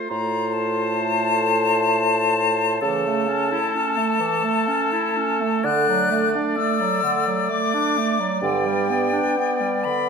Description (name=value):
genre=classical, slow romantic movement for wind quintet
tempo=65 BPM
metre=3/4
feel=uneven beats, rubato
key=D major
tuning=A4 = 444 Hz
part: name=warm oboe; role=second line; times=0.0-10.1 s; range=A4 to D5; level=-27 LUFS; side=left 5 dB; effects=none
part: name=mellow French horn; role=accompaniment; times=0.0-10.1 s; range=A3 to B3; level=-28 LUFS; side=equal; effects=none
part: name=warm clarinet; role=accompaniment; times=0.0-10.1 s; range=D3 to F4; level=-26 LUFS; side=right 8 dB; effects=none
part: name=bright concert flute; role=melody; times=0.1-10.1 s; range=G5 to F#6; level=-23 LUFS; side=left 5 dB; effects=none
part: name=dark bassoon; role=bass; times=0.1-9.2 s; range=G2 to D3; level=-26 LUFS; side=right 3 dB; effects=none
room=wet recital hall reverb, RT60 1.6 s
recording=minimal, uncompressed stereo recording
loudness=-19 LUFS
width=side -5 dB against mid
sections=0.0-10.1 A section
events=none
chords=0.1 F/A; 2.8 A/C#; 5.7 D; 8.4 G